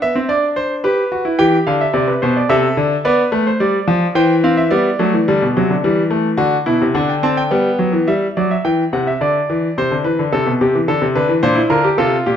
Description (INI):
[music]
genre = classical, baroque-style 3-part fugue for grand piano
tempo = 108 BPM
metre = 3/4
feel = straight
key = C major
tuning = A4 = 440 Hz
[part]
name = clear concert grand piano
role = solo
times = 0.0-12.4 s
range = Bb2 to A5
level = -13 LUFS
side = equal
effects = none
[sound]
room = wet stone room reverb, RT60 1.1 s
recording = none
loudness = -13 LUFS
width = side -8 dB against mid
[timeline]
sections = 0.0-8.1 A section; 8.1-12.4 B section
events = none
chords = 0.0 N.C.; 0.8 G; 1.4 C; 2.5 D5/C; 3.0 G; 4.2 C/E; 4.7 G; 5.8 A5/E; 6.4 D; 7.5 G; 8.1 Em; 9.2 Dsus2; 9.8 C; 10.9 Bm; 11.4 Gm/Bb